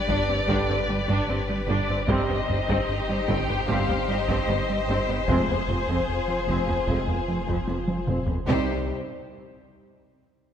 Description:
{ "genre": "cinematic, hybrid orchestral and electronic film score", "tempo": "75 BPM", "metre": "4/4", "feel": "straight", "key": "C harmonic minor", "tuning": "A4 = 442 Hz", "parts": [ { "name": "rich chamber violin section", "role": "melody", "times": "0.0-8.9 s", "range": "C5 to G5", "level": "-30 LUFS", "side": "left 4 dB", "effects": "low-pass filter" }, { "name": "rich symphonic violin section", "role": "second line", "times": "0.0-8.9 s", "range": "G4 to C5", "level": "-31 LUFS", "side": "left 3 dB", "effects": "none" }, { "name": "warm symphonic viola section", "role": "accompaniment", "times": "0.0-8.9 s", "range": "B3 to G4", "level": "-32 LUFS", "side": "equal", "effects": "low-pass filter" }, { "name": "warm sub bass", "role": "bass", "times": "0.0-8.9 s", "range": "F1 to C2", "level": "-35 LUFS", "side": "equal", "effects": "none" }, { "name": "rubbery square bass", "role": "riff", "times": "0.1-8.4 s", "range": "F2 to G3", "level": "-31 LUFS", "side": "right 1 dB", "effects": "low-pass filter" }, { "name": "clear symphonic double bass section", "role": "bass", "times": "0.1-8.9 s", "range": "F1 to C2", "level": "-32 LUFS", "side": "right 3 dB", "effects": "none" }, { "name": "warm symphonic cello section", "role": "bass", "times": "0.1-8.9 s", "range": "F2 to C3", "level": "-32 LUFS", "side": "right 2 dB", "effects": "none" }, { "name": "taiko ensemble", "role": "drums", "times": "0.1-8.7 s", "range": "none", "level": "-32 LUFS", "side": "left 1 dB", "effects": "none" }, { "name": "dark French horn section", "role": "sustained chords", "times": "0.5-8.8 s", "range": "B3 to G4", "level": "-37 LUFS", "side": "left 2 dB", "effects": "none" }, { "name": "warm trombone section", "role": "sustained chords", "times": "0.5-8.8 s", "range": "C3 to Ab3", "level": "-36 LUFS", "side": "right 3 dB", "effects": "low-pass filter" } ], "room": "moderate concert hall reverb, RT60 2.3 s", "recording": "none", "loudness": "-22 LUFS", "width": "side -8 dB against mid", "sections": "0.0-8.5 A section; 8.5-10.5 B section", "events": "filter sweep 0.0-8.5; drum fill 7.7-8.5", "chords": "0.0 G; 2.1 Cm/G; 5.3 Fm; 8.5 Cm" }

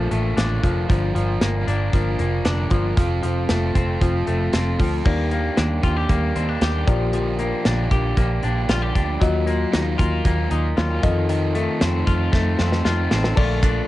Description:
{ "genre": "jangly indie pop", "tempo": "115 BPM", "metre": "4/4", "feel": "straight", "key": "Bb major", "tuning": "A4 = 440 Hz", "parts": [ { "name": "crunchy overdriven guitar", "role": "accompaniment", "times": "0.0-13.9 s", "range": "G2 to Bb4", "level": "-27 LUFS", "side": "right 6 dB", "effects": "none" }, { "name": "semi-hollow electric guitar", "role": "arpeggios", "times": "0.0-13.9 s", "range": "Eb3 to G4", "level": "-25 LUFS", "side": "left 4 dB", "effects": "spring reverb, analog delay" }, { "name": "vintage muted fingered electric bass", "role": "bass", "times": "0.0-13.8 s", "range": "F1 to F2", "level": "-22 LUFS", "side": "equal", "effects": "none" }, { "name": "modern studio drum kit", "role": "drums", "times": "0.1-13.8 s", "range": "crash cymbal, hi-hat, kick drum, snare drum", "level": "-22 LUFS", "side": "equal", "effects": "none" }, { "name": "reed electric piano", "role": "accompaniment", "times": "5.1-13.9 s", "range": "Bb3 to Eb5", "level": "-30 LUFS", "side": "left 4 dB", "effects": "phaser" }, { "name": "group handclap", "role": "percussion", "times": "13.6-13.8 s", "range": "none", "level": "-35 LUFS", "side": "right 8 dB", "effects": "none" } ], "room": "moderate booth ambience, RT60 0.2 s", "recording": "home recording on cassette, nothing above 10.9 kHz", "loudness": "-18 LUFS", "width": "side -16 dB against mid", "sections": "0.0-5.1 A section; 5.1-13.4 B section", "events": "drum fill 12.3-13.4", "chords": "0.0 Bbmaj7; 0.9 Gm7; 3.0 F; 5.1 Ebmaj7; 6.9 Bb6; 9.2 Ebmadd9; 11.0 F7; 13.4 Bbmaj7" }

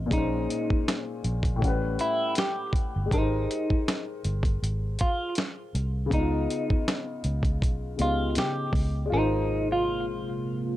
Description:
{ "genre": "lo-fi hip hop", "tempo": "80 BPM", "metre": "4/4", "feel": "swing 56% on 16ths", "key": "unclear", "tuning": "A4 = 442 Hz", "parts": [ { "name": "dark upright piano", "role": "accompaniment", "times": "0.0-10.8 s", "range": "A2 to F#5", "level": "-32 LUFS", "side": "left 3 dB", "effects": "cassette tape, low-pass filter, plate reverb" }, { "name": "vintage muted fingered electric bass", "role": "bass", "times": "0.0-10.6 s", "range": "G1 to Db3", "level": "-29 LUFS", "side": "equal", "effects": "none" }, { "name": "semi-hollow electric guitar", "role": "melody", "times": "0.1-10.0 s", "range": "Eb4 to G4", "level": "-29 LUFS", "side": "equal", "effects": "phaser, low-pass filter, tape echo, plate reverb" }, { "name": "dusty soul sampler-style drum kit", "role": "drums", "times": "0.1-8.9 s", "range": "hi-hat, kick drum, snare drum", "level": "-27 LUFS", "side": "equal", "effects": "none" }, { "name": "dark analog pad", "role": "sustained chords", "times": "9.4-10.8 s", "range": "C3 to F4", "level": "-33 LUFS", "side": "right 1 dB", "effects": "chorus, phaser, low-pass filter" } ], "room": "moderate small room reverb, RT60 0.5 s", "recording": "none", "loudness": "-25 LUFS", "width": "side -14 dB against mid", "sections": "0.0-9.1 A section; 9.1-10.8 B section", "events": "none", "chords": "0.1 Bbm9; 1.6 A13; 3.1 Abmaj9; 6.1 Db9; 9.1 Ab69" }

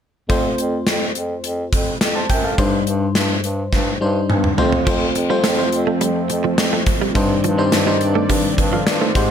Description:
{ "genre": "1980s-style pop", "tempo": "105 BPM", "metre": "4/4", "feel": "straight", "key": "F mixolydian", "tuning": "A4 = 440 Hz", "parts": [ { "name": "FM electric piano", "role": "accompaniment", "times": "0.3-9.3 s", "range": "G2 to A5", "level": "-20 LUFS", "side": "left 2 dB", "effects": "chorus" }, { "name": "warm bass clarinet", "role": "bass", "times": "0.3-9.3 s", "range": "F2 to Ab2", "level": "-24 LUFS", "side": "right 1 dB", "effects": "none" }, { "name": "gated 80s drum kit", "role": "drums", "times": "0.3-9.3 s", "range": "crash cymbal, hi-hat, kick drum, snare drum, toms", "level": "-19 LUFS", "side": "equal", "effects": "gated reverb" }, { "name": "brassy analog pad", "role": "sustained chords", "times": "4.9-9.3 s", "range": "Eb3 to D5", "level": "-24 LUFS", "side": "right 1 dB", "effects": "chorus" }, { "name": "direct-recorded clean electric guitar", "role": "riff", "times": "4.9-9.2 s", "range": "F3 to A3", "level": "-25 LUFS", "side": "right 7 dB", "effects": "wide subtle chorus, ping-pong delay" } ], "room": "light reverb, small room ambience", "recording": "none", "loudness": "-16 LUFS", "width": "side -8 dB against mid", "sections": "0.3-4.9 A section; 4.9-9.3 B section", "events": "drum fill 3.7-4.9", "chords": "0.3 F; 2.6 Cmadd9/G; 4.6 F; 7.2 Cmadd9/G" }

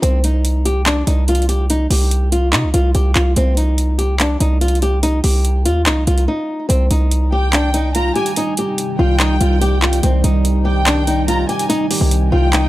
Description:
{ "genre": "hip hop, trap", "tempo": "144 BPM", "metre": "4/4", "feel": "half-time", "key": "C minor", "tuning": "A4 = 440 Hz", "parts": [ { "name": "flamenco guitar", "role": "melody", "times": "0.0-12.7 s", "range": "C4 to G4", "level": "-19 LUFS", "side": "left 1 dB", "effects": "tape echo" }, { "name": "hard-hitting 808-style bass", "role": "bass", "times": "0.0-12.7 s", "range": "C2 to C3", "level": "-15 LUFS", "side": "equal", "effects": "none" }, { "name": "trap drum kit", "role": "drums", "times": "0.0-12.6 s", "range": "handclaps, hi-hat", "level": "-20 LUFS", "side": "equal", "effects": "none" }, { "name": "deep dark ambient pad", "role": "sustained chords", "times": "7.5-12.7 s", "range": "C3 to Eb4", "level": "-23 LUFS", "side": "right 1 dB", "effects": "chorus, built-in reverb" }, { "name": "warm symphonic violin section", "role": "second line", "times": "7.3-12.7 s", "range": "G5 to Bb5", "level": "-24 LUFS", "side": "equal", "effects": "tape echo" } ], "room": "light reverb", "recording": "dry, gritty hardware recording", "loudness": "-13 LUFS", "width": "side -16 dB against mid", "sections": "0.0-6.7 A section; 6.7-12.7 B section", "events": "break 6.3-6.7", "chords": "0.0 Cm" }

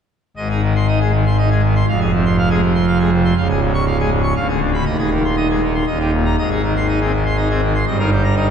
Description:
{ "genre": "classical, organ toccata", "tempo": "120 BPM", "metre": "3/4", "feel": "straight", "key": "Ab major", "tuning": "A4 = 440 Hz", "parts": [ { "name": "pipe organ, full organ", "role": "solo", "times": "0.4-8.5 s", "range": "Db1 to Db6", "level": "-14 LUFS", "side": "equal", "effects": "none" } ], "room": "wet church reverb, RT60 3.5 s", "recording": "recorded in a church or concert hall", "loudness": "-14 LUFS", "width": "side -7 dB against mid", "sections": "0.4-8.5 A section", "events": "none", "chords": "0.4 Ab; 1.9 Fm; 3.4 Db; 4.4 Ddim7; 4.9 Ab/Eb; 5.9 Eb; 6.4 Ab; 7.9 Eb/G" }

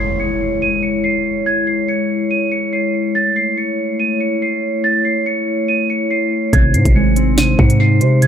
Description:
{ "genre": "hip hop, drill", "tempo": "142 BPM", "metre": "4/4", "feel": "half-time", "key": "C# harmonic minor", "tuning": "A4 = 441 Hz", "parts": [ { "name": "large celesta", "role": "melody", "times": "0.0-8.3 s", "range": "G#6 to D#7", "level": "-19 LUFS", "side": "right 3 dB", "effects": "low-pass filter, tape echo" }, { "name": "glass harmonica", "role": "sustained chords", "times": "0.0-8.3 s", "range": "G#3 to C#5", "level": "-19 LUFS", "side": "left 2 dB", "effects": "none" }, { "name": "impact", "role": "sound effects", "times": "0.0-1.5 s", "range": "none", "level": "-28 LUFS", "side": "equal", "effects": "none" }, { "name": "mellow electric guitar", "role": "accompaniment", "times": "6.5-8.3 s", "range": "B#2 to B#4", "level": "-16 LUFS", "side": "right 2 dB", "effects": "wide subtle chorus, low-pass filter, tape echo" }, { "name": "hard-hitting 808-style bass", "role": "bass", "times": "6.5-8.3 s", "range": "G#1 to B#2", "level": "-14 LUFS", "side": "equal", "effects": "none" }, { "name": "drill drum kit", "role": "drums", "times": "6.5-8.3 s", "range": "hi-hat, kick drum, snare drum", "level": "-15 LUFS", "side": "equal", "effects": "none" } ], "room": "digital ambience", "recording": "echo-heavy mix", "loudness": "-14 LUFS", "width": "side -8 dB against mid", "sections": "0.0-8.3 A section", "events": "impact 0.0-1.5", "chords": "0.0 C#m; 3.2 A; 6.5 G#" }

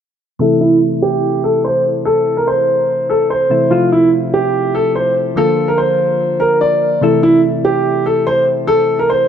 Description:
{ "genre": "hip hop", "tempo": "145 BPM", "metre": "4/4", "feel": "half-time", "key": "A phrygian", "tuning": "A4 = 440 Hz", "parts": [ { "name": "dark grand piano", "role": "melody", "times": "0.4-9.3 s", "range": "E4 to D5", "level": "-12 LUFS", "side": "equal", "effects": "low-pass filter" }, { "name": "soft electric-piano-like synth keys", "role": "accompaniment", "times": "0.4-9.3 s", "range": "C3 to F4", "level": "-19 LUFS", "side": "left 1 dB", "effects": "chorus, low-pass filter" } ], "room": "moderate plate reverb, RT60 2.8 s", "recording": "none", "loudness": "-12 LUFS", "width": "side -8 dB against mid", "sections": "0.4-7.0 A section; 7.0-9.3 B section", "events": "filter sweep 0.4-7.0", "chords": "0.4 Am; 3.7 Fmaj7; 5.4 Bb; 7.0 Am" }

